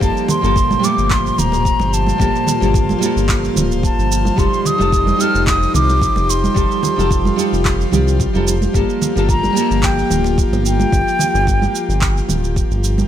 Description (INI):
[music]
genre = sunset chillout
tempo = 110 BPM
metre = 4/4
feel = swing 54% on 16ths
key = G minor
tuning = A4 = 444 Hz
[part]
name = mellow hollow silver concert flute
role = melody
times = 0.0-12.3 s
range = G5 to F6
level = -20 LUFS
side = equal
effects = digital delay
[part]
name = nylon-string guitar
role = accompaniment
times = 0.0-10.9 s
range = G3 to A4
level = -20 LUFS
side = equal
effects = auto-pan, digital delay
[part]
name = airy breathy pad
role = sustained chords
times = 0.0-13.1 s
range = Bb2 to C5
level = -22 LUFS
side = left 2 dB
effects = chorus
[part]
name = round analog bass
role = bass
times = 0.0-13.0 s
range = D1 to C2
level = -18 LUFS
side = equal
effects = none
[part]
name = electronic kick drum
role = drums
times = 0.0-12.7 s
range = none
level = -19 LUFS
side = equal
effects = none
[part]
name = electronic shaker and handclaps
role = drums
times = 0.0-13.1 s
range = none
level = -24 LUFS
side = right 4 dB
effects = none
[part]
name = congas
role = percussion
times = 0.3-13.1 s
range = none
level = -23 LUFS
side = right 3 dB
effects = none
[sound]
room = light reverb, digital ambience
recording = none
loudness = -13 LUFS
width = side -10 dB against mid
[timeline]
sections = 0.0-13.1 A section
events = none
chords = 0.0 Gm9; 4.4 F9; 8.7 Gm9